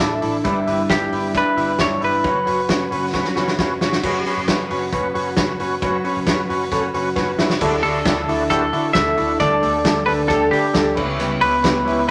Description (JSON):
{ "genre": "jangly indie pop", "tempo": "134 BPM", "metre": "4/4", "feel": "straight", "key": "unclear", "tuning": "A4 = 440 Hz", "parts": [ { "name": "combo organ", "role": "accompaniment", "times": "0.0-12.1 s", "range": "A3 to C#5", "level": "-26 LUFS", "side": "equal", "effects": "none" }, { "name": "picked twelve-string acoustic guitar", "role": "accompaniment", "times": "0.0-12.1 s", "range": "C#3 to B4", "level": "-30 LUFS", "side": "equal", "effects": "none" }, { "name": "direct-recorded clean electric guitar", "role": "arpeggios", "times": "0.0-12.1 s", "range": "C#3 to B4", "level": "-26 LUFS", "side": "equal", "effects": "tremolo" }, { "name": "vintage muted picked electric bass", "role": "bass", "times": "0.0-12.1 s", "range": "F#1 to D3", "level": "-34 LUFS", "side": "equal", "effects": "none" }, { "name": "loose indie drum kit", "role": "drums", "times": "0.0-12.0 s", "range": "crash cymbal, hi-hat, kick drum, ride cymbal, snare drum", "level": "-25 LUFS", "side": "equal", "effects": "none" }, { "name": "semi-hollow electric guitar", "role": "melody", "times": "0.9-3.6, 7.8-12.1 s", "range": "G4 to E5", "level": "-22 LUFS", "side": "equal", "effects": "none" } ], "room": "wet studio reverb, RT60 0.6 s", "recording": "none", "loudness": "-19 LUFS", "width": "mono", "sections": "0.0-4.0 A section; 4.0-7.6 B section; 7.6-12.1 C section", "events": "drum fill 3.1-4.0, 7.2-7.6", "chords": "0.4 G6; 2.2 F#sus4; 7.6 Dadd9; 9.4 Gsus2/D; 11.0 C#m7b5" }